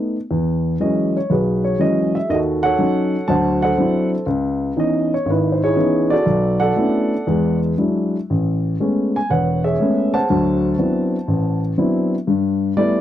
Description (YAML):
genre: solo jazz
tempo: 120 BPM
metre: 4/4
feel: swing 69% on 8ths, rubato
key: E major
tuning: A4 = 438 Hz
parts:
  - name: dark baby grand piano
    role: solo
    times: 0.0-13.0 s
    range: E1 to A5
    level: -16 LUFS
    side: equal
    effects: none
room: little or no reverb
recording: dry, close 1970s-style studio recording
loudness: -16 LUFS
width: side -11 dB against mid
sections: 0.3-13.0 A section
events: none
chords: 0.3 E69; 2.3 D#m7b5; 3.3 D9; 4.3 C#m9; 6.3 Bm11; 7.3 E9; 8.3 Amaj9; 10.3 D13; 12.3 G69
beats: | 0.30 0.80 1.30 1.80 | 2.30 2.79 3.29 3.78 | 4.28 4.77 5.27 5.77 | 6.27 6.77 7.28 7.79 | 8.30 8.80 9.30 9.80 | 10.30 10.80 11.29 11.79 | 12.28 12.78